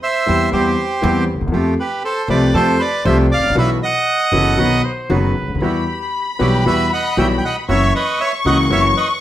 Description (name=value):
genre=tango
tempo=118 BPM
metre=4/4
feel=rubato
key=E harmonic minor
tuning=A4 = 440 Hz
part: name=bandoneon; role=melody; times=0.0-9.1 s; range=G4 to G5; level=-18 LUFS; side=right 2 dB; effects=slapback echo
part: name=warm concert grand piano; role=accompaniment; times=0.3-8.9 s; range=F#1 to G4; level=-17 LUFS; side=left 2 dB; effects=none
part: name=bandoneon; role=stabs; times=0.3-8.9 s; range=G3 to G4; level=-27 LUFS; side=right 4 dB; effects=plate reverb
part: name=upright bass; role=bass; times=0.3-8.9 s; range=F#1 to F2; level=-21 LUFS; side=right 1 dB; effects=none
part: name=bright reedy silver concert flute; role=second line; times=4.3-6.3 s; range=G4 to C5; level=-27 LUFS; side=right 2 dB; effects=plate reverb
part: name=warm studio violin section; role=second line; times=5.6-9.2 s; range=B5 to C#6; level=-20 LUFS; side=left 3 dB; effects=none
room=wet studio reverb, RT60 0.7 s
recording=rough home demo mix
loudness=-14 LUFS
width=side -12 dB against mid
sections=0.0-9.2 A section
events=none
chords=0.0 C/E; 1.5 Fadd9; 3.6 Bsus4; 4.6 B; 5.6 Emadd9; 7.7 F#7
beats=0.02 0.53 1.03 | 1.53 2.04 2.54 3.05 | 3.56 4.08 4.59 5.11 | 5.63 6.14 6.66 7.18 | 7.69 8.20 8.71